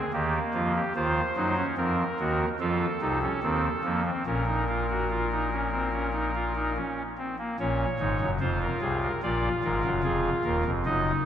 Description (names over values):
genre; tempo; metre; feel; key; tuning
classical, baroque-style 3-part fugue for pipe organ; 73 BPM; 4/4; straight; Bb minor; A4 = 440 Hz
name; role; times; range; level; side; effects
pipe organ, soft reed; solo; 0.0-11.3 s; Eb1 to Eb5; -25 LUFS; equal; none
room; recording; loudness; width
wet cathedral reverb, RT60 4.1 s; none; -25 LUFS; side -9 dB against mid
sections
0.0-7.6 A section; 7.6-11.3 B section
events
none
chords
0.0 Eb; 1.0 Cm7b5/Eb; 2.6 F; 4.3 Bbm; 9.2 Bb7